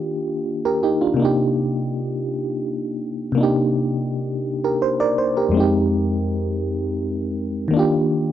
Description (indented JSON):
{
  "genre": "R&B",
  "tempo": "55 BPM (dotted quarters)",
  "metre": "6/8",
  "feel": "straight",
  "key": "C minor",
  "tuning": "A4 = 440 Hz",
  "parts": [
    { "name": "FM electric piano with auto-pan", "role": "solo", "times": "0.0-8.3 s", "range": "F2 to D5", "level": "-19 LUFS", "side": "equal", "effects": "none" }
  ],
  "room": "light reverb",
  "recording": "dry, close 1970s-style studio recording",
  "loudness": "-19 LUFS",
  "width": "side -11 dB against mid",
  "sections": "0.0-8.3 A section",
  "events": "none",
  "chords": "0.0 Ebmaj9; 1.2 Cm9; 5.5 Fm9; 7.7 Ebmaj9",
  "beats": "0.09 | 1.18 2.27 | 3.37 4.46 | 5.55 6.64 | 7.73"
}